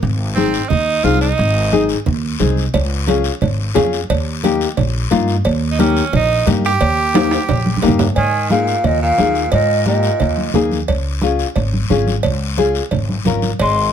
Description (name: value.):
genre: latin, cumbia.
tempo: 177 BPM.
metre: 4/4.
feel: straight.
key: Ab major.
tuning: A4 = 440 Hz.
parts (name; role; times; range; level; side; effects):
upright bass; bass; 0.0-13.9 s; Ab1 to Ab2; -19 LUFS; equal; none.
congas; percussion; 0.0-13.8 s; none; -22 LUFS; right 3 dB; none.
guiro; percussion; 0.0-13.9 s; none; -29 LUFS; left 8 dB; none.
edgy tenor saxophone; second line; 0.3-1.8, 5.7-10.5, 13.6-13.9 s; Bb2 to G4; -20 LUFS; right 5 dB; none.
nylon-string guitar; accompaniment; 0.4-13.5 s; Bb3 to Bb4; -17 LUFS; left 5 dB; none.
cowbell and timbales; percussion; 2.7-13.8 s; none; -23 LUFS; right 5 dB; none.
mellow hollow jazz flute; melody; 8.2-10.5, 13.6-13.9 s; Eb5 to C6; -17 LUFS; equal; plate reverb.
room: moderate studio reverb, RT60 0.7 s.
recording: none.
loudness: -14 LUFS.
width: side -8 dB against mid.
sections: 0.0-8.2 A section; 8.2-13.9 B section.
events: tenor saxophone solo 0.0-8.2; drum fill 7.1-8.2.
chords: 0.0 Ab; 2.7 Db; 4.1 Eb; 8.2 Absus2; 10.9 Db.